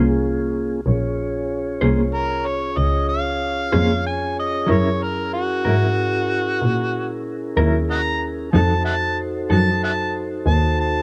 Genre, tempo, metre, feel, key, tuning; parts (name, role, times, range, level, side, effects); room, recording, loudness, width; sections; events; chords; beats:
slow blues; 62 BPM (dotted quarters); 12/8; straight; Bb minor; A4 = 440 Hz
mellow electric guitar; accompaniment; 0.0-9.7 s; F3 to C5; -23 LUFS; equal; tremolo
mellow tonewheel organ; sustained chords; 0.0-11.0 s; Bb3 to Db5; -27 LUFS; equal; slow rotary speaker
muted double bass; bass; 0.0-11.0 s; Bb1 to Bb2; -24 LUFS; equal
overdriven harmonica; melody; 2.1-11.0 s; Gb4 to Bb5; -25 LUFS; equal
little or no reverb; rough home demo mix; -21 LUFS; mono
0.0-11.0 A section
harmonica solo 0.0-11.0
0.0 Bbm9; 4.7 Gb7; 8.5 F7b9
| 0.85 1.81 2.77 3.73 | 4.70 5.66 6.62 7.58 | 8.54 9.50 10.46